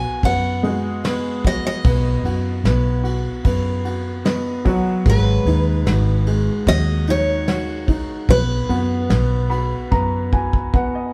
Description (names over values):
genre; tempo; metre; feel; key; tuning
acoustic folk-pop ballad; 74 BPM; 4/4; straight; B major; A4 = 439 Hz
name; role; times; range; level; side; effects
picked steel-string acoustic guitar; melody; 0.0-10.7 s; B4 to G#5; -26 LUFS; equal; none
warm concert grand piano; accompaniment; 0.0-11.1 s; G#3 to B5; -26 LUFS; equal; none
vintage muted fingered electric bass; bass; 0.0-11.1 s; G#1 to F#2; -22 LUFS; equal; none
soft brush drum kit; drums; 0.2-10.9 s; kick drum, ride cymbal, snare drum; -25 LUFS; equal; none
felt-muted upright piano; arpeggios; 0.6-10.0 s; F#3 to B3; -26 LUFS; equal; none
room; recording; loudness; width
wet small room reverb, RT60 0.5 s; heard from further back in the room; -19 LUFS; mono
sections
0.0-11.1 A section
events
drum fill 9.9-11.1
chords
0.0 B; 5.1 G#m7; 8.3 B5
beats
0.23 1.04 | 1.84 2.65 3.45 4.25 | 5.05 5.86 6.67 7.47 | 8.28 9.10 9.91 10.73